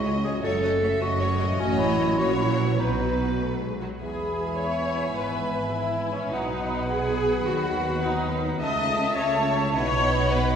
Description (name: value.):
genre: classical, dramatic, fast romantic movement for symphony orchestra.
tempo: 104 BPM (dotted quarters).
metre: 6/8.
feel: rubato.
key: E major.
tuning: A4 = 444 Hz.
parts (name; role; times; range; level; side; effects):
clear clarinet; second line; 0.0-10.6 s; C#4 to F#5; -30 LUFS; left 1 dB; none.
rich symphonic violin section; second line; 0.0-10.6 s; B4 to A5; -34 LUFS; equal; none.
dark French horn section; sustained chords; 0.0-10.6 s; E3 to D#4; -32 LUFS; left 1 dB; none.
concert harp; arpeggios; 0.0-10.6 s; E2 to F#5; -33 LUFS; left 3 dB; none.
rich symphonic cello section; bass; 0.0-10.6 s; C#2 to D#3; -31 LUFS; right 2 dB; none.
warm symphonic double bass section; bass; 0.0-10.6 s; E1 to D#2; -30 LUFS; right 3 dB; none.
warm symphonic violin section; melody; 0.1-10.6 s; B4 to B5; -36 LUFS; left 2 dB; none.
warm studio viola section; accompaniment; 0.1-10.6 s; F#3 to D#5; -29 LUFS; equal; none.
mellow hollow flute section; second line; 4.0-10.6 s; A5 to B5; -34 LUFS; right 4 dB; none.
room: wet scoring stage reverb, RT60 1.6 s.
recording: heard from further back in the room.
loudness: -22 LUFS.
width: side -8 dB against mid.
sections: 0.0-4.0 A section; 4.0-10.6 B section.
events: none.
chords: 0.4 F#m; 1.6 F#m7/A; 2.2 F#7/A#; 2.8 B; 4.0 E; 5.2 E/G#; 6.3 B; 7.5 B/D#; 8.6 A/C#; 9.7 B.